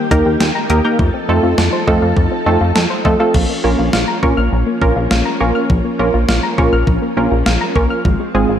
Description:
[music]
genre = synth-pop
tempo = 102 BPM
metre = 4/4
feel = straight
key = Bb minor from 3.3 s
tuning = A4 = 441 Hz
[part]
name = ensemble organ-string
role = sustained chords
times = 0.0-8.6 s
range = Eb3 to A4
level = -21 LUFS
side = equal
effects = ensemble chorus
[part]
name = soft round pluck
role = arpeggios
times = 0.0-8.6 s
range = F3 to G6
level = -22 LUFS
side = left 2 dB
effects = chorus, analog delay
[part]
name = funky polysynth comp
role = accompaniment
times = 0.1-8.5 s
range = Ab3 to Bb4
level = -17 LUFS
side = right 2 dB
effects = chorus
[part]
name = chorused synth bass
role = bass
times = 0.1-8.6 s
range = Ab1 to F2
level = -17 LUFS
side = equal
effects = none
[part]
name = gated 80s digital drum machine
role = drums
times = 0.1-8.2 s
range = crash cymbal, hi-hat, kick drum, snare drum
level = -17 LUFS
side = equal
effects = gated reverb, gated reverb snare
[sound]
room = moderate lush hall reverb, RT60 1.7 s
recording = dark, warm production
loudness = -12 LUFS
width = side -9 dB against mid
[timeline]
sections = 0.0-3.3 A section; 3.3-8.6 B section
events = none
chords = 0.0 Eb; 1.0 F7; 3.3 Bbm; 8.1 Fm/Ab

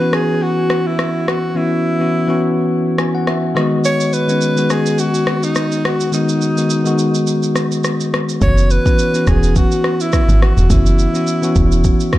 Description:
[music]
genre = afrobeats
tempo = 105 BPM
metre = 4/4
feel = swing 55% on 16ths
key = unclear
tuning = A4 = 440 Hz
[part]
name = breathy alto saxophone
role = melody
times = 0.0-11.8 s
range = D#4 to C#5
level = -20 LUFS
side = right 1 dB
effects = tape echo
[part]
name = bell-like tine electric piano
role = accompaniment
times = 0.0-12.2 s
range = D#3 to G#5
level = -16 LUFS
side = left 1 dB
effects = none
[part]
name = deep house drum kit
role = drums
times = 0.1-12.2 s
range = kick drum, rim click, shaker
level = -19 LUFS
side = equal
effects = vintage 12-bit sampler grit
[part]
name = woody FM bass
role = bass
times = 8.4-11.9 s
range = E1 to G#1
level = -13 LUFS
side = equal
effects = none
[sound]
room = light reverb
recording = none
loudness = -13 LUFS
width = side -15 dB against mid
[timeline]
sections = 0.0-12.2 A section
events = break 0.0-8.4; tine electric piano fill 2.7-3.8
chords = 0.0 F#7sus4; 3.6 G#m7; 8.4 F#7sus4

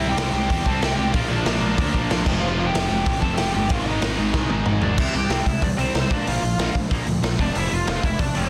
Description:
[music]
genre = punk rock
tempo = 188 BPM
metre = 4/4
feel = straight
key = unclear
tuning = A4 = 441 Hz
[part]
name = biting lead guitar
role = melody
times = 0.0-8.5 s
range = C4 to A5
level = -29 LUFS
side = equal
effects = overdrive
[part]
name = high-gain distorted guitar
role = riff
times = 0.0-5.0 s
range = F2 to C4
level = -31 LUFS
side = equal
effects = distortion
[part]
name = sludgy distorted guitar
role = riff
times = 0.0-8.5 s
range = F2 to C4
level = -29 LUFS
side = equal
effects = overdrive
[part]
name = fuzz picked electric bass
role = bass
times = 0.0-8.5 s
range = F1 to E2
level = -28 LUFS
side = equal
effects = overdrive
[part]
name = raw garage drum kit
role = drums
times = 0.2-8.4 s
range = crash cymbal, hi-hat, kick drum, snare drum, toms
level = -26 LUFS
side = equal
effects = none
[sound]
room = little or no reverb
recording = dense, heavily limited modern master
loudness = -22 LUFS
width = mono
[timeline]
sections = 0.0-5.0 A section; 5.0-8.5 B section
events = drum fill 4.3-5.0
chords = 0.0 C; 1.1 Bb; 2.3 F5; 3.7 Ab5; 5.0 C; 6.1 Bb; 7.4 F5

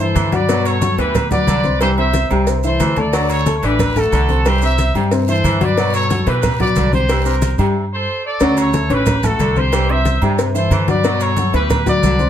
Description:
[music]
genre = latin, salsa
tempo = 182 BPM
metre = 4/4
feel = straight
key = unclear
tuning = A4 = 440 Hz
[part]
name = bright trumpet section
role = melody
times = 0.0-12.3 s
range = F#4 to E5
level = -20 LUFS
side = equal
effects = plate reverb
[part]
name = dark baby grand piano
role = accompaniment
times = 0.0-12.3 s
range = B2 to D6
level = -19 LUFS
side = left 3 dB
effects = none
[part]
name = upright bass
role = bass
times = 0.0-12.3 s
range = A1 to B2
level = -18 LUFS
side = right 1 dB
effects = none
[part]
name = agogo bells and timbales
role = percussion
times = 0.0-12.2 s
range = none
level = -27 LUFS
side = right 7 dB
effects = none
[part]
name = bright saxophone section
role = second line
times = 0.1-12.2 s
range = C3 to F#3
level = -26 LUFS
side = equal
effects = none
[part]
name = congas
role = percussion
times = 0.2-12.3 s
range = none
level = -21 LUFS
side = left 1 dB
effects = none
[part]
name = cowbell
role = percussion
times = 0.2-12.2 s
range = none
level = -25 LUFS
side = left 1 dB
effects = none
[part]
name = maracas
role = percussion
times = 0.2-12.3 s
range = none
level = -34 LUFS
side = right 9 dB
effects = none
[part]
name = guiro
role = percussion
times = 3.1-7.8 s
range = none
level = -37 LUFS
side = left 6 dB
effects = none
[sound]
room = moderate studio reverb, RT60 0.6 s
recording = none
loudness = -13 LUFS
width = side -10 dB against mid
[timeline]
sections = 0.0-8.4 A section; 8.4-12.3 A section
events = stop 7.8-8.4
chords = 0.5 Gmaj7; 1.8 C; 3.1 D; 4.5 C; 5.8 Gmaj7; 7.1 C7; 8.4 Dmaj7; 9.7 C; 11.0 Gmaj7

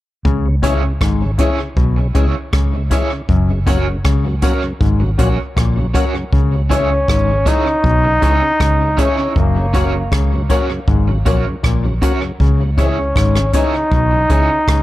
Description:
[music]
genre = roots reggae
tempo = 79 BPM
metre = 4/4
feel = straight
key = C# dorian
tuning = A4 = 440 Hz
[part]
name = overdriven clav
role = riff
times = 0.2-14.8 s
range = F#2 to C#3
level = -24 LUFS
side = left 6 dB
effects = none
[part]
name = vintage muted fingered electric bass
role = bass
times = 0.2-14.8 s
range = F#1 to C#2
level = -17 LUFS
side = equal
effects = none
[part]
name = jazz brush drum kit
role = drums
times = 0.3-14.8 s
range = hi-hat, kick drum, rim click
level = -18 LUFS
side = equal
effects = none
[part]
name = tonewheel organ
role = accompaniment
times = 0.5-14.6 s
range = F#2 to C#4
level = -26 LUFS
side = equal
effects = overdrive, chorus vibrato, stopped rotary speaker, tape echo
[part]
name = electric guitar at the edge of break-up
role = accompaniment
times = 0.6-14.5 s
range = C#4 to C#5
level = -25 LUFS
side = right 6 dB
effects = tremolo, tape echo
[part]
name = dark upright piano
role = stabs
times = 0.6-14.4 s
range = C#4 to C#5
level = -24 LUFS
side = left 6 dB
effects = none
[part]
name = clear trombone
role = melody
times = 6.7-14.8 s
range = A#3 to D#4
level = -17 LUFS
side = equal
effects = tape echo
[sound]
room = light reverb, small room ambience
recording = none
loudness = -13 LUFS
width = side -16 dB against mid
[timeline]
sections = 0.3-6.3 A section; 6.3-14.8 B section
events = none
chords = 0.3 C#m; 3.3 F#; 6.3 C#m; 9.4 F#; 12.4 C#m

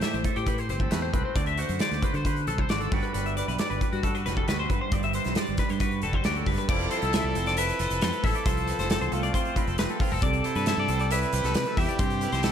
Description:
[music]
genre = math rock and midwest emo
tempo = 135 BPM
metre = 4/4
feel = straight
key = unclear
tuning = A4 = 439 Hz
[part]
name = twangy electric guitar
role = accompaniment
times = 0.0-12.5 s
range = G2 to D5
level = -33 LUFS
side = right 6 dB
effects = wide subtle chorus, slapback echo
[part]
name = twelve-string electric guitar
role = arpeggios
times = 0.0-12.5 s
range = F4 to E5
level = -30 LUFS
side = left 6 dB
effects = lush chorus
[part]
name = loose indie drum kit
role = drums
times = 0.0-12.5 s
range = crash cymbal, hi-hat, kick drum, snare drum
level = -28 LUFS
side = equal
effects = none
[part]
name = fingered electric bass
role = bass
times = 0.1-12.5 s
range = F1 to D3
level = -30 LUFS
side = equal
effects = none
[part]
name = clear trumpet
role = melody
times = 6.7-12.5 s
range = F4 to B4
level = -31 LUFS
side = equal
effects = slapback echo
[sound]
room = moderate lush hall reverb, RT60 1.9 s, small room ambience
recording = big arena sound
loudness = -24 LUFS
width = side -9 dB against mid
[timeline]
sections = 0.0-6.7 A section; 6.7-12.5 B section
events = none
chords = 0.0 Am9; 1.4 D7; 2.9 Gmaj7; 6.7 Fmaj7; 10.2 Cmaj7

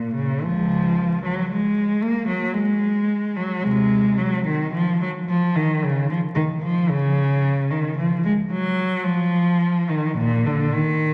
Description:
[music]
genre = classical, baroque-style suite movement for unaccompanied cello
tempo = 56 BPM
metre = 3/4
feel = rubato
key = Eb minor from 6.9 s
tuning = A4 = 439 Hz
[part]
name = warm cello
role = solo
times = 0.0-11.1 s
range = Db2 to Bb3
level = -21 LUFS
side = equal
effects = none
[sound]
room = wet concert hall reverb, RT60 2.2 s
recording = vinyl crackle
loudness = -21 LUFS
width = mono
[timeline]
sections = 0.0-11.1 A section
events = none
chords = none

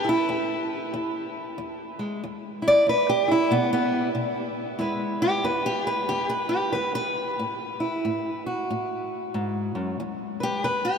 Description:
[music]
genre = acoustic country blues, solo or duo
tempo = 93 BPM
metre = 4/4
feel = swing 61% on 8ths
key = E major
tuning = A4 = 440 Hz
[part]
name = fingerpicked steel-string acoustic guitar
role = solo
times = 0.0-11.0 s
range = E2 to D5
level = -23 LUFS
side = equal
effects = none
[sound]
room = wet huge ambient reverb, RT60 7.2 s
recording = in a vast, echoing space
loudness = -23 LUFS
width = side -6 dB against mid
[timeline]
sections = 0.0-4.8 A section; 4.8-11.0 B section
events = steel-string acoustic guitar solo 0.0-4.8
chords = 0.0 N.C.; 4.8 E; 7.4 A5; 10.0 E5

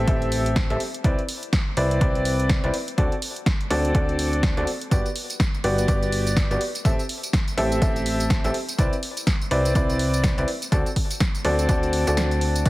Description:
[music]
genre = piano house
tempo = 124 BPM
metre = 4/4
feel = swing 59% on 16ths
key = unclear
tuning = A4 = 440 Hz
[part]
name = clear upright piano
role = riff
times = 0.0-12.7 s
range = B3 to E5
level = -25 LUFS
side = equal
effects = sidechain pumping, ping-pong delay
[part]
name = plucky analog bass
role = bass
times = 0.0-12.7 s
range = G1 to D2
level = -25 LUFS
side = equal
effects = sidechain pumping
[part]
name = electronic kick drum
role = drums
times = 0.1-12.7 s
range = none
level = -22 LUFS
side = equal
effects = overdrive
[part]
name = punchy analog drum machine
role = drums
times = 0.1-12.7 s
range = crash cymbal, hi-hat, snare drum, tambourine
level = -29 LUFS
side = right 1 dB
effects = overdrive
[sound]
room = light reverb, digital ambience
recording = heavily compressed radio sound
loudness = -20 LUFS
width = side -18 dB against mid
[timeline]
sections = 0.0-12.7 A section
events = kick drops out 12.2-12.7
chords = 0.0 Am7; 0.8 Cmaj9; 2.7 D7; 4.9 Gmaj7; 6.6 Am7; 8.5 Cmaj9; 10.5 D7

